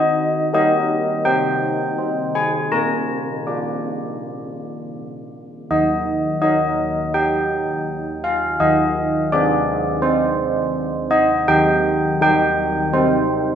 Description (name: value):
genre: classical, tune for church bells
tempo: 82 BPM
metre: 4/4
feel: straight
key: Eb major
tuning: A4 = 440 Hz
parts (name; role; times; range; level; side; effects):
- old church bells; solo; 0.0-13.6 s; Eb3 to Bb5; -17 LUFS; equal; none
room: light reverb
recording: close, detailed microphones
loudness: -16 LUFS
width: side -8 dB against mid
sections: 0.0-13.6 A section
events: none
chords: 0.0 Eb; 1.3 Cm; 2.7 Bb; 5.7 Eb; 8.6 Ab/Eb; 11.5 Eb; 12.9 Cm